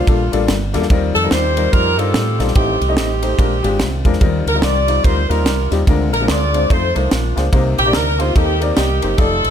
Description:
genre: uptempo gospel.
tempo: 145 BPM.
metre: 4/4.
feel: swing 61% on 8ths.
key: unclear.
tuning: A4 = 440 Hz.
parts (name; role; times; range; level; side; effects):
mellow saxophone section; melody; 0.0-9.5 s; A3 to D5; -18 LUFS; equal; none.
warm upright piano; accompaniment; 0.1-9.4 s; A2 to Eb5; -20 LUFS; left 4 dB; none.
fingered electric bass with an envelope filter; bass; 0.1-9.5 s; F1 to A2; -19 LUFS; right 1 dB; none.
crisp fusion drum kit; drums; 0.1-9.5 s; kick drum, ride cymbal, snare drum; -18 LUFS; right 1 dB; none.
room: little or no reverb.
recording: none.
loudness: -13 LUFS.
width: side -9 dB against mid.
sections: 0.0-9.5 A section.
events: none.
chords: 0.0 Gm9; 0.9 Eb69; 2.6 Am7b5; 3.4 Bb9; 4.2 Eb69; 5.9 Bb9; 6.7 F7; 7.1 Bb9; 7.5 Cm7.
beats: 0.07 0.48 | 0.90 1.31 1.73 2.14 | 2.56 2.97 3.39 3.80 | 4.21 4.63 5.04 5.46 | 5.87 6.29 6.70 7.11 | 7.53 7.94 8.36 8.77 | 9.19.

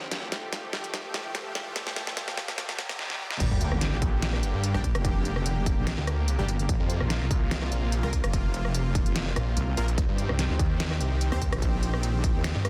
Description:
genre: heavy wobble dubstep.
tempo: 146 BPM.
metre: 4/4.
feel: half-time.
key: G minor.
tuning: A4 = 440 Hz.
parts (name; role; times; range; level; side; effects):
supersaw pad; sustained chords; 0.0-12.7 s; C3 to G4; -38 LUFS; equal; sidechain pumping.
riser and sub drop; sound effects; 0.6-5.0 s; none; -40 LUFS; equal; none.
dubstep drum kit; drums; 0.1-12.7 s; crash cymbal, hi-hat, rim click, snare drum; -34 LUFS; equal; studio reverb.
wobble bass; bass; 3.4-12.5 s; F1 to Eb2; -30 LUFS; equal; chorus, overdrive.
electronic kick drum; drums; 3.4-12.3 s; none; -30 LUFS; equal; studio reverb.
snarling distorted saw bass; bass; 3.5-12.7 s; G1 to G2; -30 LUFS; equal; distortion, overdrive.
supersaw stab; stabs; 4.7-11.4 s; G3 to C5; -39 LUFS; equal; delay.
room: little or no reverb.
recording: dense, heavily limited modern master, high-pass filter.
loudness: -28 LUFS.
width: mono.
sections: 0.0-3.4 A section; 3.4-12.7 B section.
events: build-up 0.0-3.4; drum fill 0.0-3.0, 3.0-3.4; drop 3.4-12.7; impact 3.4-5.0.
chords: 0.1 Fadd9; 3.4 Gm; 6.7 Bbsus2; 10.0 Cm.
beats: | 0.12 0.53 0.94 1.35 | 1.76 2.17 2.58 2.99 | 3.40 3.81 4.22 4.63 | 5.05 5.46 5.87 6.28 | 6.69 7.10 7.51 7.92 | 8.33 8.74 9.16 9.57 | 9.98 10.39 10.80 11.21 | 11.62 12.03 12.44.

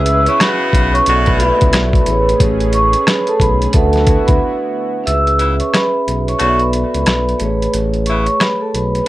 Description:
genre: hip hop, boom-bap hip-hop.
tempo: 90 BPM.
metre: 4/4.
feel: swing 61% on 16ths.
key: unclear.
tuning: A4 = 440 Hz.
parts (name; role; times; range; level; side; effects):
vibraphone with soft mallets; melody; 0.0-9.0 s; A4 to E6; -16 LUFS; equal; high-pass filter, low-pass filter, plate reverb.
vibraphone with soft mallets; accompaniment; 0.0-9.1 s; A3 to F#5; -19 LUFS; right 2 dB; cassette tape, high-pass filter, low-pass filter, plate reverb.
warm analog pad; sustained chords; 0.0-5.0 s; C#3 to B4; -26 LUFS; left 2 dB; chorus, high-pass filter, low-pass filter, plate reverb.
smooth synth bass; bass; 0.0-9.0 s; A1 to D2; -17 LUFS; equal; none.
boom bap sampler-style drum kit; drums; 0.1-9.1 s; hi-hat, kick drum, rim click, snare drum; -16 LUFS; equal; vintage 12-bit sampler grit.
edgy saxophone section; stabs; 0.3-8.3 s; B2 to F#4; -22 LUFS; left 1 dB; high-pass filter, low-pass filter, tape echo, plate reverb.
room: light reverb.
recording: none.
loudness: -12 LUFS.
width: side -16 dB against mid.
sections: 0.0-5.1 A section; 5.1-9.1 B section.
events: break 4.4-5.1, 5.1-9.1.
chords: 0.0 C#m7; 1.1 B7sus4; 2.1 Amaj9; 3.7 D69; 5.1 C#m7; 6.4 B7sus4; 7.4 Amaj9.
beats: 0.40 1.07 1.73 | 2.40 3.07 3.73 4.40 | 5.07 5.73 6.40 7.07 | 7.73 8.40 9.07.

